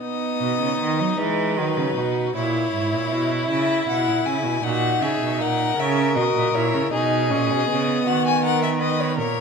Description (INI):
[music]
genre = classical, baroque-style fugue for string quartet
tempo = 52 BPM (dotted quarters)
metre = 12/8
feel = straight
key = B major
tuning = A4 = 441 Hz
[part]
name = rich violin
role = melody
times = 0.0-9.4 s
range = B4 to G#5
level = -25 LUFS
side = left 10 dB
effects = none
[part]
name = warm violin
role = second line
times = 0.0-9.4 s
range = D#4 to B4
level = -26 LUFS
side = left 4 dB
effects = none
[part]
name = warm viola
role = accompaniment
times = 0.0-9.1 s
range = F#3 to F#4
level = -24 LUFS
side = right 4 dB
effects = none
[part]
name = rich cello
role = bass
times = 0.4-9.4 s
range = G#2 to F#3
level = -25 LUFS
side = right 6 dB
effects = none
[sound]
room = moderate recital hall reverb, RT60 1.6 s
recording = none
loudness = -19 LUFS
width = side -5 dB against mid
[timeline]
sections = 0.0-9.4 A section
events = none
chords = 0.0 B; 2.4 A#dim; 4.6 F#/A#